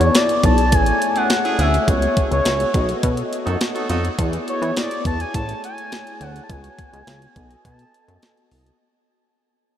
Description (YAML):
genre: early-eighties boogie funk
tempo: 104 BPM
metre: 4/4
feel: straight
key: unclear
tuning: A4 = 438 Hz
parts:
  - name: expressive synth lead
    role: melody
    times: 0.0-8.5 s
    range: C#5 to A5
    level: -22 LUFS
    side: equal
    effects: chorus
  - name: mellow synth brass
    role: accompaniment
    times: 0.0-8.8 s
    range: A3 to D#5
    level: -25 LUFS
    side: left 2 dB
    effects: chorus
  - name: chorused synth bass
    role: bass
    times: 0.0-8.7 s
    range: A1 to E3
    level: -21 LUFS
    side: equal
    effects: none
  - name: clean 12-bit digital drum machine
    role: drums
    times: 0.0-8.8 s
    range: hi-hat, kick drum, snare drum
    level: -22 LUFS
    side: equal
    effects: overdrive
  - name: warm horn section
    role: second line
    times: 1.2-4.1 s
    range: C#4 to A4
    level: -30 LUFS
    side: right 2 dB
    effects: none
room: wet huge ambient reverb, RT60 7.8 s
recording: dreamy mix soaked in reverb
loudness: -17 LUFS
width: side -10 dB against mid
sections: 0.0-8.8 A section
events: fade-out 0.0-8.8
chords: 0.0 E7; 0.7 Amaj7; 1.9 C#7sus4; 2.7 B7; 4.2 E7; 5.3 Amaj7; 6.5 C#7sus4; 7.4 B7